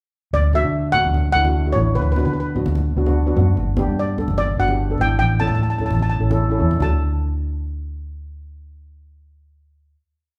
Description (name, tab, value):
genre	calypso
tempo	148 BPM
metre	4/4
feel	straight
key	D major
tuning	A4 = 440 Hz
part	steel pan	melody	0.3-10.0 s	B4 to A5	-24 LUFS	equal	none
part	vintage muted fingered electric bass	bass	0.3-9.9 s	G1 to D3	-22 LUFS	equal	none
part	congas	percussion	0.3-7.0 s	none	-30 LUFS	equal	none
part	steel pan	accompaniment	0.5-10.0 s	A3 to A4	-27 LUFS	equal	none
room	wet large studio reverb, RT60 1.2 s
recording	band playing live in one room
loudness	-19 LUFS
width	mono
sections	0.3-6.8 verse; 6.8-10.1 final chord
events	none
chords	0.3 Dadd9; 2.0 Bm/D; 3.6 Gadd9; 5.2 A; 6.8 D